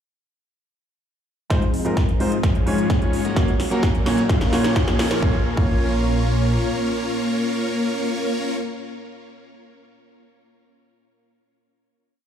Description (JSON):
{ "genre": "EDM, festival progressive house", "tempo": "129 BPM", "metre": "4/4", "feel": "straight", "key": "Bb minor", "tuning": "A4 = 440 Hz", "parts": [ { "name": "warm grand piano", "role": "accompaniment", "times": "1.5-8.6 s", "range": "Ab2 to Db5", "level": "-25 LUFS", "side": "right 1 dB", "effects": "sidechain pumping, ping-pong delay" }, { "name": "lush unison pad", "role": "sustained chords", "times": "1.5-8.2 s", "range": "Bb2 to F4", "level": "-30 LUFS", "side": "equal", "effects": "chorus, sidechain pumping" }, { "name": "big supersaw lead", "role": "riff", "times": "1.5-8.6 s", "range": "Ab3 to Eb5", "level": "-25 LUFS", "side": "left 1 dB", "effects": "sidechain pumping, low-pass filter, ping-pong delay" }, { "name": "fat analog bass", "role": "bass", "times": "1.5-6.6 s", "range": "Gb1 to Ab2", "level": "-27 LUFS", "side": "equal", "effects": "none" }, { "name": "big-room dance drum kit", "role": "drums", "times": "1.5-5.2 s", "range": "hi-hat, snare drum", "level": "-29 LUFS", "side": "left 1 dB", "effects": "none" }, { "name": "electronic kick drum", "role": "drums", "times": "1.5-5.7 s", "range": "none", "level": "-20 LUFS", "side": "equal", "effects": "none" }, { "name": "riser", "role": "sound effects", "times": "3.5-5.2 s", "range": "none", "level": "-33 LUFS", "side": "left 2 dB", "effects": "none" } ], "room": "light reverb", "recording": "played on a big sound system in a bare room, large studio reverb", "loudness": "-18 LUFS", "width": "side -9 dB against mid", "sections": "1.5-5.2 build; 5.2-8.9 final chord", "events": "build-up 1.5-5.2; drum fill 1.5-5.2; filter sweep on supersaw synth 1.5-5.2; filter sweep on analog synth pad 1.5-5.2", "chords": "1.5 Ab6; 2.4 Db/Ab; 3.4 Gb; 4.3 Bbm", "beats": "| 1.50 1.97 2.43 2.90 | 3.36 3.83 4.29 4.76 | 5.22 5.69 6.16 6.62 | 7.08 7.55 8.02 8.48" }